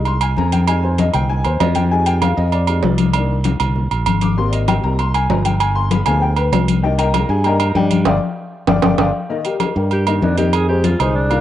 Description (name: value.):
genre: Afro-Cuban jazz.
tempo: 195 BPM.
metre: 4/4.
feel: straight.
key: unclear.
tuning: A4 = 440 Hz.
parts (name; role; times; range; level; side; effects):
warm upright piano; accompaniment; 0.0-11.4 s; Eb3 to D6; -20 LUFS; left 4 dB; none.
modern bright fingered electric bass; bass; 0.0-11.4 s; G1 to G2; -17 LUFS; right 1 dB; none.
agogo bells and timbales; percussion; 0.1-11.4 s; none; -22 LUFS; right 9 dB; none.
congas; percussion; 0.1-11.4 s; none; -21 LUFS; left 6 dB; none.
clear alto saxophone; melody; 9.9-11.4 s; Bb3 to Ab4; -20 LUFS; right 1 dB; cassette tape.
room: moderate spring reverb, RT60 1.9 s, small room ambience.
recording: home recording on cassette, nothing above 10.8 kHz.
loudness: -14 LUFS.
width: side -12 dB against mid.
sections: 0.0-9.3 A section; 9.3-11.4 A section.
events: upright piano solo 0.0-9.3; band accent 8.1-9.3; drum fill 8.4-9.3; alto saxophone solo 9.3-11.4.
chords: 0.0 Fm9; 3.1 Cm9; 4.4 Abmaj7; 5.6 G7b9; 6.8 Cm9; 8.1 G5; 9.3 F9sus4; 10.5 Fm7.